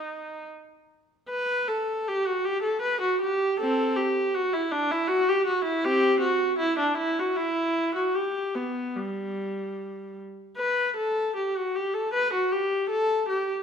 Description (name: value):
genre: classical, baroque-style suite movement for unaccompanied viola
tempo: 73-81 BPM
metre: 3/4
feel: rubato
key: G major from 5.8 s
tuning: A4 = 440 Hz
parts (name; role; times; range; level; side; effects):
- rich viola; solo; 0.0-13.6 s; G3 to B4; -24 LUFS; equal; none
room: wet recital hall reverb, RT60 1.2 s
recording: none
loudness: -24 LUFS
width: side -7 dB against mid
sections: 0.0-10.6 A section; 10.6-13.6 A section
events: none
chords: none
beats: 0.51 | 1.30 2.07 2.83 | 3.60 4.35 5.10 | 5.84 6.59 7.36 | 8.15 8.96 9.78 | 10.59 11.37 12.14 | 12.90